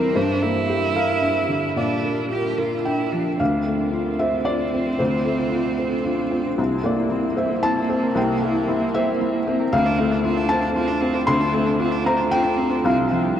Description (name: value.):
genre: neoclassical piano and strings.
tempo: 114 BPM.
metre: 3/4.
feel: rubato.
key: D minor.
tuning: A4 = 436 Hz.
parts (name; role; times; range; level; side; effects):
rich cello; second line; 0.0-13.4 s; G3 to G4; -25 LUFS; right 4 dB; none.
felt-muted upright piano; accompaniment; 0.0-13.4 s; C2 to C6; -21 LUFS; left 2 dB; none.
granular cloud pad; sustained chords; 0.0-13.4 s; C4 to C5; -29 LUFS; right 1 dB; built-in reverb.
concert harp; arpeggios; 3.4-13.4 s; C4 to C5; -28 LUFS; equal; slapback echo.
room: wet cathedral reverb, RT60 6.9 s.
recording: in a vast, echoing space.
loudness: -19 LUFS.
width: side -10 dB against mid.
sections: 0.0-3.4 A section; 3.4-13.4 B section.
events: none.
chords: 0.2 Gm; 1.8 Bb; 3.4 Dm7; 6.6 C7; 9.7 Dm7; 12.9 Csus4.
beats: | 0.16 0.69 1.22 | 1.77 2.31 2.86 | 3.40 3.93 4.46 | 4.99 5.53 6.06 | 6.58 7.11 7.63 | 8.16 8.69 9.21 | 9.73 10.24 10.76 | 11.28 11.81 12.33 | 12.86 13.39.